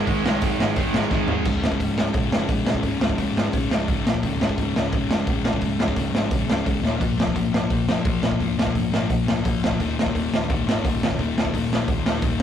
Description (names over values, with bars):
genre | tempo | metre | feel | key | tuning
punk rock | 172 BPM | 4/4 | straight | Db major | A4 = 439 Hz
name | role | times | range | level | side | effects
crunchy overdriven guitar | riff | 0.0-1.4 s | Ab2 to Ab3 | -27 LUFS | right 6 dB | none
overdriven electric guitar | riff | 0.0-1.5 s | Ab2 to Ab3 | -29 LUFS | right 3 dB | none
sludgy distorted guitar | riff | 0.0-12.4 s | Db2 to Bb3 | -24 LUFS | left 3 dB | overdrive
picked electric bass | bass | 0.1-12.4 s | Db1 to Ab2 | -31 LUFS | equal | none
raw garage drum kit | drums | 0.1-12.4 s | crash cymbal, hi-hat, kick drum, snare drum, toms | -23 LUFS | right 1 dB | none
room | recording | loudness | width
light reverb | rough rehearsal-room recording, warm saturation | -20 LUFS | side -9 dB against mid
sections
0.0-1.4 A section; 1.4-12.4 B section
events
drum fill 1.1-1.4, 6.8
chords
0.0 Ab5; 1.4 Db5; 4.1 Bb5; 4.2 Db5; 6.8 Eb5; 7.0 Bbm/Db; 9.8 Eb5